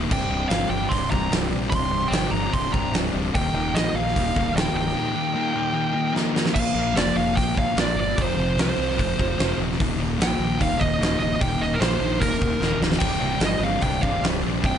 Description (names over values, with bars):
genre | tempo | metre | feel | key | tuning
hard rock | 149 BPM | 4/4 | straight | unclear | A4 = 439 Hz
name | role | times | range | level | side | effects
sludgy distorted guitar | riff | 0.0-14.8 s | C2 to Bb3 | -25 LUFS | left 2 dB | overdrive
fuzz fingered electric bass | bass | 0.0-14.8 s | C1 to C2 | -28 LUFS | equal | overdrive
high-gain lead guitar | melody | 0.1-14.8 s | Bb4 to C6 | -26 LUFS | right 2 dB | distortion, slapback echo
overdriven tonewheel organ | sustained chords | 0.1-6.5, 13.0-14.8 s | C4 to D5 | -35 LUFS | equal | chorus vibrato, slow rotary speaker
huge arena drum kit | drums | 0.1-14.7 s | crash cymbal, hi-hat, kick drum, snare drum | -25 LUFS | equal | none
room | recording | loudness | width
moderate large studio reverb, RT60 1.1 s, small room ambience | nothing above 10.6 kHz | -20 LUFS | side -9 dB against mid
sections
0.0-6.6 A section; 6.6-14.8 A section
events
drum fill 6.2-6.6, 12.6-13.0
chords
0.1 C5; 3.3 Eb; 6.6 Bb5; 8.2 F5; 9.8 Eb5; 13.0 C5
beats
| 0.11 0.52 0.92 1.32 | 1.73 2.13 2.53 2.93 | 3.34 3.74 4.14 4.55 | 4.95 5.35 5.75 6.16 | 6.56 6.96 7.37 7.77 | 8.17 8.57 8.98 9.38 | 9.79 10.19 10.59 10.99 | 11.40 11.80 12.21 12.61 | 13.01 13.41 13.82 14.22 | 14.62